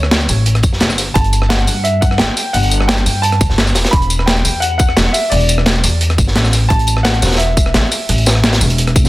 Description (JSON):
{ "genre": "liquid drum and bass", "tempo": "173 BPM", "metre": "4/4", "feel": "straight", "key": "unclear", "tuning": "A4 = 437 Hz", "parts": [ { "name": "warm baby grand piano", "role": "melody", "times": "0.0-9.1 s", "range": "C#5 to B5", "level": "-20 LUFS", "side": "equal", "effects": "digital delay" }, { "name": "upright bass", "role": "bass", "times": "0.0-9.1 s", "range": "E1 to G2", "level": "-15 LUFS", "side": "equal", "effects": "none" }, { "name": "breakbeat sampler-style drum kit", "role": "drums", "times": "0.0-9.1 s", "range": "hi-hat, rim click, snare drum, tambourine", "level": "-16 LUFS", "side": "equal", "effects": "none" }, { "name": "crunchy breakbeat drum kit", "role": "drums", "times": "0.1-9.1 s", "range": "hi-hat, snare drum", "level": "-20 LUFS", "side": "equal", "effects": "high-pass filter on hats, high-pass filter on snare, high-pass filter on room" }, { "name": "electronic kick drum", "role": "drums", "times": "0.6-9.0 s", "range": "none", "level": "-13 LUFS", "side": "equal", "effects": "none" } ], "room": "small room ambience", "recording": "dense, heavily limited modern master", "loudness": "-11 LUFS", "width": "side -18 dB against mid", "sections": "0.0-9.1 A section", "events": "none", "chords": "0.0 Dmaj7; 1.0 Gsus2; 3.8 Esus4" }